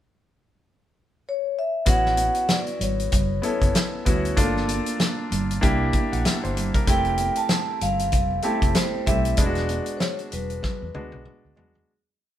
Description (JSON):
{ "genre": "lush 1970s-style soul", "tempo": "96 BPM", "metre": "4/4", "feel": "swing 58% on 16ths", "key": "unclear", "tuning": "A4 = 440 Hz", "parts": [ { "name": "vibraphone with medium mallets", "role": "melody", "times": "1.3-11.5 s", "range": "B4 to A5", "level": "-26 LUFS", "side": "equal", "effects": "none" }, { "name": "clear concert grand piano", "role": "accompaniment", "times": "1.9-11.9 s", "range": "G#3 to F#5", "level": "-27 LUFS", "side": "left 1 dB", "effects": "none" }, { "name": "vintage muted fingered electric bass", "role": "bass", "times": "1.9-11.8 s", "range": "E1 to E2", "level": "-28 LUFS", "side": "equal", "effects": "none" }, { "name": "warm soul drum kit", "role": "drums", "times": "1.9-11.9 s", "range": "hi-hat, kick drum, snare drum, toms", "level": "-24 LUFS", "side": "equal", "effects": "none" }, { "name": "congas", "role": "percussion", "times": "2.0-11.9 s", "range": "none", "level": "-33 LUFS", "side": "right 4 dB", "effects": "none" } ], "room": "moderate stone room reverb, RT60 1.1 s", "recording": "band playing live in one room", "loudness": "-20 LUFS", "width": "side -11 dB against mid", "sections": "0.0-1.9 pickup bar; 1.9-11.9 verse", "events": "fade-out 9.4-11.9; drum fill 10.6-11.9", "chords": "0.0 N.C.; 1.9 A6; 4.4 Gm9; 5.6 C7; 6.9 Fmaj9; 9.4 E7" }